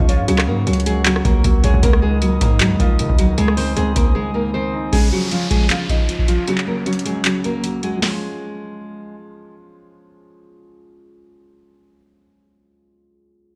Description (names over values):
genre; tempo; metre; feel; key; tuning
hip hop, trap; 155 BPM; 4/4; half-time; Db major; A4 = 442 Hz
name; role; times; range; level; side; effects
nylon-string guitar; melody; 0.0-9.1 s; F3 to Eb5; -24 LUFS; equal; low-pass filter
dark concert grand piano; accompaniment; 0.0-13.6 s; Db2 to Db5; -27 LUFS; equal; low-pass filter
glass harmonica; sustained chords; 0.0-4.9 s; Ab4 to Eb6; -33 LUFS; equal; none
hard-hitting 808-style bass; bass; 0.0-4.1 s; Db2 to Db3; -22 LUFS; equal; none
booming analog drum machine; drums; 0.0-8.1 s; handclaps, hi-hat, kick drum, rim click, snare drum; -20 LUFS; equal; none
downlifter; sound effects; 4.9-8.0 s; none; -31 LUFS; equal; none
room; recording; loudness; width
light reverb; none; -17 LUFS; mono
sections
0.0-4.9 A section; 4.9-8.0 B section; 8.0-11.1 C section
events
break 4.2-4.9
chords
0.3 Gb/Db; 1.8 Ebm/Db; 3.4 Ab/Db; 4.9 Db; 6.5 Gb/Db; 8.0 Db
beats
| 0.28 0.67 1.06 1.44 | 1.83 2.22 2.60 2.99 | 3.38 3.77 4.15 4.54 | 4.93 5.31 5.70 6.09 | 6.47 6.86 7.25 7.64 | 8.02 8.41 8.80 9.19 | 9.57 9.96 10.35 10.73